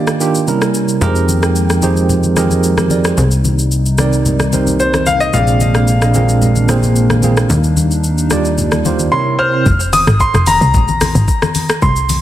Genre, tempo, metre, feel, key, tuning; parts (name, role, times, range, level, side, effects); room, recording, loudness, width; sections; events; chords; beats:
amapiano; 111 BPM; 4/4; straight; F dorian; A4 = 440 Hz
clear grand piano; melody; 0.0-0.2, 4.8-12.2 s; C5 to F6; -16 LUFS; left 1 dB; digital delay
tine electric piano; accompaniment; 0.0-9.7 s; Bb2 to Bb5; -15 LUFS; right 4 dB; medium tremolo
hollow soft pad; sustained chords; 0.0-9.7 s; C3 to G5; -21 LUFS; left 2 dB; chorus, sidechain pumping
smooth R&B drum kit; drums; 0.1-12.2 s; hi-hat, kick drum, rim click, shaker; -19 LUFS; left 1 dB
plucky analog bass; bass; 1.0-9.1 s; Bb1 to F2; -15 LUFS; equal
congas; percussion; 1.0-12.2 s; -21 LUFS; left 4 dB
woody log drum bass; bass; 9.7-12.2 s; F1 to C2; -14 LUFS; equal
little or no reverb; -11 LUFS; side -12 dB against mid
0.0-9.7 A section; 9.7-12.2 B section
tine electric piano fill 0.0-1.0; drop 9.7-12.2
0.5 C7b9; 1.0 Fm11; 3.2 Cm7; 5.3 Bb9; 7.5 Ebmaj7; 9.1 C7b9; 9.7 Fmadd11
0.47 | 1.01 1.55 2.10 2.63 | 3.18 3.72 4.26 4.80 | 5.34 5.88 6.42 6.96 | 7.50 8.04 8.58 9.12 | 9.66 10.20 10.74 11.28 | 11.82